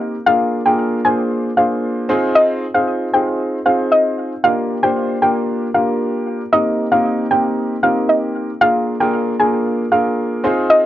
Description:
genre	pop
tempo	115 BPM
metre	4/4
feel	straight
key	unclear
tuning	A4 = 445 Hz
part	soft round pluck	melody	0.0-10.9 s	Eb5 to Ab5	-15 LUFS	equal	chorus, cassette tape
part	dark baby grand piano	accompaniment	0.0-10.9 s	Bb3 to C5	-18 LUFS	equal	cassette tape
room	wet booth ambience, RT60 0.3 s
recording	home recording on cassette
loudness	-14 LUFS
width	side -13 dB against mid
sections	0.0-10.9 A section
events	none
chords	0.3 Bb7; 2.1 Ab6; 4.4 Gm7; 6.5 Cm7; 8.6 Bb7

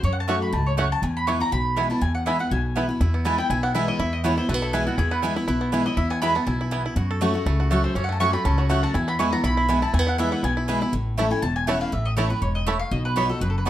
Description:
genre	bluegrass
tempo	242 BPM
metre	4/4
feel	swing 54% on 8ths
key	E major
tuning	A4 = 440 Hz
part	mandolin	melody	0.0-13.7 s	F#4 to C#6	-27 LUFS	right 1 dB	plate reverb
part	picked steel-string acoustic guitar	accompaniment	0.0-13.7 s	E2 to F#4	-26 LUFS	left 1 dB	none
part	upright bass	bass	0.0-13.7 s	E1 to F#2	-25 LUFS	equal	none
part	bluegrass banjo	melody	0.3-13.7 s	A3 to A4	-30 LUFS	right 3 dB	none
part	mandolin	stabs	0.3-13.7 s	A3 to B5	-28 LUFS	right 3 dB	none
room	moderate studio reverb, RT60 0.7 s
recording	none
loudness	-20 LUFS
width	side -12 dB against mid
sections	0.0-3.0 A section; 3.0-10.9 A section; 10.9-13.7 B section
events	none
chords	0.0 F#m; 1.0 E; 7.0 F#m; 8.9 E; 10.9 A; 12.9 B

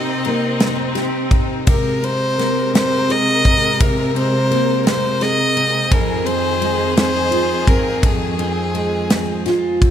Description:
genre	six-eight pop ballad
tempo	56 BPM (dotted quarters)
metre	6/8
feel	straight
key	Ab major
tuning	A4 = 440 Hz
part	rich violin	melody	0.0-9.8 s	Ab4 to Eb5	-20 LUFS	equal	none
part	fingerpicked steel-string acoustic guitar	accompaniment	0.0-9.9 s	F2 to Ab4	-20 LUFS	equal	double-tracked left and right
part	bright studio string section	sustained chords	0.0-9.9 s	F2 to Bb4	-24 LUFS	left 3 dB	none
part	modern studio drum kit	drums	0.2-9.9 s	kick drum, ride cymbal, snare drum	-18 LUFS	equal	none
room	light reverb, small room reverb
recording	none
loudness	-15 LUFS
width	side -9 dB against mid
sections	0.0-9.9 A section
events	none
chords	0.0 Cm7; 1.7 Abadd9/C; 5.9 Fm7

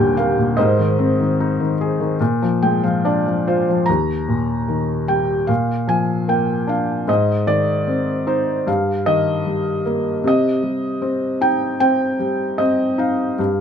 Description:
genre	classical, lyrical solo piano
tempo	75 BPM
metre	4/4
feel	rubato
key	Eb major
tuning	A4 = 442 Hz
part	felt-muted upright piano	solo	0.0-13.6 s	Eb2 to Bb5	-16 LUFS	left 1 dB	none
room	light reverb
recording	close, detailed microphones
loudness	-16 LUFS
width	side -8 dB against mid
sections	0.0-3.9 A section; 3.9-13.6 B section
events	felt piano fill 2.2-3.9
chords	0.0 Ebmaj7; 0.6 Abadd9; 2.2 Bb7; 3.9 Eb; 5.5 Bb; 7.1 Ab; 8.7 Eb/G; 10.3 Cm

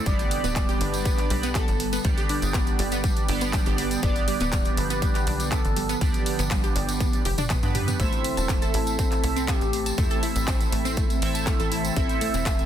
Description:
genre	progressive house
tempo	121 BPM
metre	4/4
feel	straight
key	unclear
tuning	A4 = 440 Hz
part	airy breathy pad	sustained chords	0.0-12.7 s	D3 to C4	-33 LUFS	equal	chorus, phaser, sidechain pumping
part	chorused polysynth	stabs	0.0-12.7 s	B3 to E5	-30 LUFS	right 4 dB	phaser, cassette tape, sidechain pumping, digital delay
part	expressive synth lead	melody	0.1-12.6 s	G4 to E5	-32 LUFS	equal	wide subtle chorus, digital delay
part	wide unison pluck	arpeggios	0.1-12.5 s	G3 to A6	-32 LUFS	equal	sidechain pumping, digital delay
part	tight sequencer bass	bass	0.1-12.7 s	D1 to G2	-30 LUFS	equal	sidechain pumping
part	big-room dance drum kit	drums	0.1-12.7 s	handclaps, hi-hat, toms	-32 LUFS	equal	none
part	electronic kick drum	drums	0.1-12.6 s	none	-25 LUFS	equal	none
part	tambourine	percussion	0.1-12.7 s	none	-37 LUFS	right 1 dB	none
room	light reverb, digital ambience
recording	dense, heavily limited modern master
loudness	-22 LUFS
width	side -10 dB against mid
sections	0.0-12.7 A section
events	drum fill 7.0-8.0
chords	0.1 G; 8.0 Am

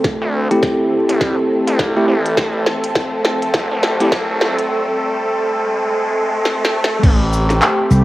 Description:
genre	glitch hop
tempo	103 BPM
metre	4/4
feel	swing 60% on 16ths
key	A minor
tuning	A4 = 440 Hz
part	warm analog pad	sustained chords	0.0-8.0 s	A3 to A4	-19 LUFS	equal	chorus, vintage 12-bit sampler grit, sidechain pumping, cassette tape
part	electronic kick drum	drums	0.0-7.2 s	none	-16 LUFS	equal	studio reverb
part	glitchy drum kit	drums	0.0-7.8 s	crash cymbal, handclaps, hi-hat, snare drum	-19 LUFS	equal	high-pass filter on hats, studio reverb, high-pass filter on snare, high-pass filter on cymbals
part	riser	sound effects	0.0-7.0 s	none	-27 LUFS	equal	none
part	gritty driven synth bass	bass	0.2-7.6 s	G1 to D2	-19 LUFS	equal	overdrive, high-pass filter
part	bell-like tine electric piano	stabs	0.5-4.1 s	A3 to G4	-18 LUFS	equal	auto-pan, sidechain pumping, cassette tape, tape echo
part	cabasa	percussion	7.0-8.0 s	none	-34 LUFS	left 6 dB	none
part	vintage slap bass	bass	7.9-8.0 s	C2	-9 LUFS	equal	none
room	moderate spring reverb, RT60 2.5 s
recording	home recording on cassette, vinyl crackle, high-pass filter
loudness	-14 LUFS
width	side -17 dB against mid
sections	0.0-7.0 A section; 7.0-8.0 B section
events	build-up 0.0-7.0; drum fill 0.0-4.7, 6.5-7.0; riser 0.0-7.0; filter sweep on analog synth pad 0.0-7.0; filter sweep 0.0-7.0; drop 7.0-8.0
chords	0.0 Am7

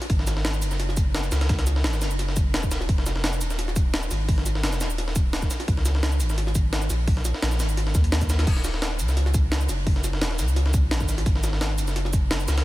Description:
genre	liquid drum and bass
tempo	172 BPM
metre	4/4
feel	swing 53% on 16ths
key	unclear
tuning	A4 = 440 Hz
part	breakbeat sampler-style drum kit	drums	0.0-12.6 s	hi-hat, snare drum	-33 LUFS	equal	high-pass filter on snare, high-pass filter on hats
part	jungle sampler-style drum kit	drums	0.0-12.6 s	cabasa, crash cymbal, hi-hat, snare drum	-28 LUFS	equal	none
part	warm sub bass	bass	0.1-12.6 s	Eb1 to Eb2	-24 LUFS	equal	none
part	electronic kick drum	drums	0.1-12.2 s	none	-24 LUFS	equal	none
room	light reverb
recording	none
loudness	-21 LUFS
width	side -17 dB against mid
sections	0.0-8.5 A section; 8.5-12.6 A section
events	drop 0.0-8.5, 8.5-12.6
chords	none

